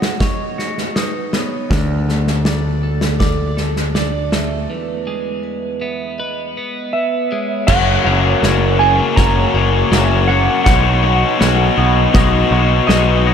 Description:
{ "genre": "post-rock", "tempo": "80 BPM", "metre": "4/4", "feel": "straight", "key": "unclear", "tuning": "A4 = 440 Hz", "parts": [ { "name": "twelve-string electric guitar", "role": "arpeggios", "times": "0.0-13.3 s", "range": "E2 to D5", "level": "-24 LUFS", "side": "left 1 dB", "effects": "phaser, diffuse ambient delay" }, { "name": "vibraphone with medium mallets", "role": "arpeggios", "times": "0.0-13.3 s", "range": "A4 to F#5", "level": "-25 LUFS", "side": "right 8 dB", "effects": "diffuse ambient delay" }, { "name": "loose indie drum kit", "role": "drums", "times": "0.0-13.1 s", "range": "crash cymbal, kick drum, snare drum", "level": "-19 LUFS", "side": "equal", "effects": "none" }, { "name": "growling picked electric bass", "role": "bass", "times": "1.7-13.3 s", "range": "F#1 to D2", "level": "-16 LUFS", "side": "equal", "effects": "overdrive" }, { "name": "clean lap steel guitar", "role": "melody", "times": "6.9-13.3 s", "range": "D#5 to A#5", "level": "-19 LUFS", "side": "right 2 dB", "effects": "wide subtle chorus, diffuse ambient delay" }, { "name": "biting overdriven guitar", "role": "riff", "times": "7.7-13.3 s", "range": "F#2 to F#4", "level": "-16 LUFS", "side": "left 6 dB", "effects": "none" } ], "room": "moderate huge ambient reverb, RT60 4.9 s", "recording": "dreamy mix soaked in reverb", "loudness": "-13 LUFS", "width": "side -8 dB against mid", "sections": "0.0-7.7 A section; 7.7-13.3 B section", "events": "break 4.7-7.7; build-up 7.7-13.3; drum fill 7.7-13.3", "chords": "0.0 Badd9; 1.7 Dsus2; 4.7 Emaj7; 7.7 F#add9; 10.7 Badd9", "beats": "0.20 0.95 | 1.70 2.45 3.20 3.95 | 4.70 5.45 6.20 6.94 | 7.69 8.43 9.18 9.92 | 10.66 11.41 12.15 12.89" }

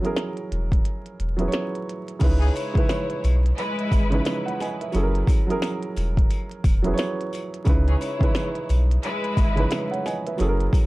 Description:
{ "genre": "hip hop, boom-bap hip-hop", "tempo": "88 BPM", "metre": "4/4", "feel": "swing 60% on 16ths", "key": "C# dorian", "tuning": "A4 = 440 Hz", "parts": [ { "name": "dark baby grand piano", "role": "accompaniment", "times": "0.0-10.9 s", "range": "C#3 to G#5", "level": "-27 LUFS", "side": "right 2 dB", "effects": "cassette tape, high-pass filter, low-pass filter" }, { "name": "glitchy drum kit", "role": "drums", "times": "0.0-10.9 s", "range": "crash cymbal, hi-hat, kick drum, snare drum", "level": "-22 LUFS", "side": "equal", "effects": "none" }, { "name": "soft dub sub bass", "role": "bass", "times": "0.5-10.7 s", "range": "E1 to C#2", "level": "-21 LUFS", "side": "equal", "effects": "none" }, { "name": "sleigh bells", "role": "percussion", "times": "2.2-10.9 s", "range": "none", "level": "-44 LUFS", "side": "left 7 dB", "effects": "none" }, { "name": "clear symphonic string section", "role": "stabs", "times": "2.4-9.9 s", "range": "E3 to C#5", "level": "-29 LUFS", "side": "left 2 dB", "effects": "high-pass filter, low-pass filter, ping-pong delay" } ], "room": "little or no reverb", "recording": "vinyl crackle", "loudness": "-21 LUFS", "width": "side -19 dB against mid", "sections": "0.0-2.2 A section; 2.2-10.9 B section", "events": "break 0.8-2.2", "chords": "0.0 F#7; 2.2 C#m7; 4.9 F#7; 7.7 C#m7", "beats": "0.17 0.85 1.53 | 2.21 2.89 3.57 4.26 | 4.94 5.62 6.30 6.98 | 7.67 8.35 9.03 9.71 | 10.39" }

